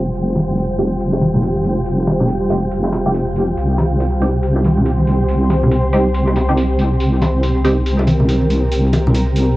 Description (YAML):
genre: deep dubstep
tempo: 140 BPM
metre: 4/4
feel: swing 60% on 16ths, half-time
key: unclear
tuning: A4 = 440 Hz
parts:
  - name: granular cloud pad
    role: sustained chords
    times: 0.0-9.6 s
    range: C4 to C5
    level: -22 LUFS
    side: equal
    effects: built-in reverb, cassette tape
  - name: wobble bass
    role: bass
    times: 0.0-9.6 s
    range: F1 to C2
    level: -16 LUFS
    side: equal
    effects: chorus
  - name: wind-like tuned noise texture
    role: texture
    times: 0.0-9.6 s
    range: G3 to G5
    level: -23 LUFS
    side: right 1 dB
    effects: built-in reverb, cassette tape
  - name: electronic hi-hat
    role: drums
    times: 0.1-9.5 s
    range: none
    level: -35 LUFS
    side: right 1 dB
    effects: low-pass filter on toms, cassette tape, low-pass filter on hats, low-pass filter on cymbals, low-pass filter on snare
  - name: congas and bongos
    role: percussion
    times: 0.4-9.1 s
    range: none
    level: -20 LUFS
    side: equal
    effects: none
  - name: filtered dub chord stab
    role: stabs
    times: 0.8-7.8 s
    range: Ab3 to G4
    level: -22 LUFS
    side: right 1 dB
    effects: phaser, lush chorus, vintage 12-bit sampler grit, cassette tape, dub echo
room: light reverb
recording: home recording on cassette, vinyl crackle, low-pass filter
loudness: -14 LUFS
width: side -17 dB against mid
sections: 0.0-9.6 A section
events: filter sweep on synth stab 0.0-9.6; filter sweep on ambient pad 0.0-9.6; filter sweep 0.0-9.6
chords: 0.0 Fmadd9; 3.6 C5